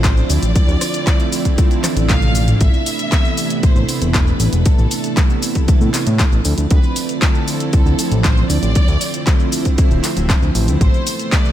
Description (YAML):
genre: nu-disco, nu disco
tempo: 117 BPM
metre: 4/4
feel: straight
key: unclear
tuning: A4 = 440 Hz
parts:
  - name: dark studio violin section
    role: melody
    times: 0.0-11.5 s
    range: A4 to F5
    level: -27 LUFS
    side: left 1 dB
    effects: dub echo
  - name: string machine, full ensemble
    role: sustained chords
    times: 0.0-11.5 s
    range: F3 to C6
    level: -25 LUFS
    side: right 1 dB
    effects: ensemble chorus, sidechain pumping
  - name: fat analog bass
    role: bass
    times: 0.0-10.9 s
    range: D1 to A2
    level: -17 LUFS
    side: equal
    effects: tube saturation
  - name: electronic kick drum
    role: drums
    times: 0.0-11.4 s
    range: none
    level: -14 LUFS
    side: equal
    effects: overdrive
  - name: house drum kit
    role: drums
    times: 0.0-11.5 s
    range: handclaps, hi-hat, rim click, shaker, toms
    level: -22 LUFS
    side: equal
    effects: overdrive
  - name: warm analog pad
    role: accompaniment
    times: 0.2-11.5 s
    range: C3 to E4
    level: -22 LUFS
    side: right 2 dB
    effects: chorus, sidechain pumping, tape echo
  - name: swell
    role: sound effects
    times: 1.8-2.6 s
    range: none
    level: -28 LUFS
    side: right 9 dB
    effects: none
room: little or no reverb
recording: echo-heavy mix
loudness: -13 LUFS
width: side -12 dB against mid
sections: 0.0-11.5 A section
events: swell 1.8-2.6; drum fill 1.8-2.6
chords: 0.0 Dm7; 2.6 Amadd9; 6.5 Dm7; 10.8 Amadd9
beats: 0.04 | 0.55 1.07 1.58 2.09 | 2.60 3.12 3.63 4.14 | 4.66 5.17 5.68 6.20 | 6.71 7.22 7.73 8.25 | 8.76 9.27 9.79 10.30 | 10.81 11.32